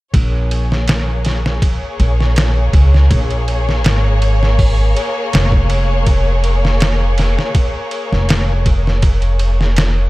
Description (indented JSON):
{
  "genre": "trip hop",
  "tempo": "81 BPM",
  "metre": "4/4",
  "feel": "straight",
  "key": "Bb minor",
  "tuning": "A4 = 440 Hz",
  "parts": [
    { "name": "warm studio violin section", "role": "sustained chords", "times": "0.1-10.1 s", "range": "Bb3 to Db5", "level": "-22 LUFS", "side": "left 1 dB", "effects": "none" },
    { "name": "upright bass", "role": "bass", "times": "0.1-10.1 s", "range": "F1 to Db2", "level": "-14 LUFS", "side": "equal", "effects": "none" },
    { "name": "trip hop sampler-style drum kit", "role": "drums", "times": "0.1-10.0 s", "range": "hi-hat, kick drum, ride cymbal, snare drum", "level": "-17 LUFS", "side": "equal", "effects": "none" }
  ],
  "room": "small room ambience",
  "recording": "none",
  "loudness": "-12 LUFS",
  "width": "side -19 dB against mid",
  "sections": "0.1-10.1 A section",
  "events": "none",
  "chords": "0.1 Bbm7"
}